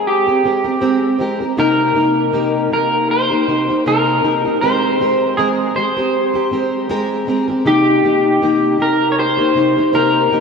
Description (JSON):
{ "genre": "indie pop", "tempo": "79 BPM", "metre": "4/4", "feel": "swing 55% on 16ths", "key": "unclear", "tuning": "A4 = 440 Hz", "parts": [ { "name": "electric guitar through a small old amp", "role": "melody", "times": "0.0-10.4 s", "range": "G4 to Db5", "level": "-16 LUFS", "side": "equal", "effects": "wide subtle chorus, tape echo" }, { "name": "fingerpicked plugged-in steel-string acoustic guitar", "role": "accompaniment", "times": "0.0-10.4 s", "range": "C3 to Bb4", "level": "-16 LUFS", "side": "equal", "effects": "lush chorus, warbly pitch drift" } ], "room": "wet lush hall reverb, RT60 2.9 s", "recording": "dreamy mix soaked in reverb", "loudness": "-13 LUFS", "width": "side -5 dB against mid", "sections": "0.0-10.4 A section", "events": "none", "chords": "0.0 Abmaj9; 1.6 Cm7; 4.6 Abmaj9; 7.7 Cm7" }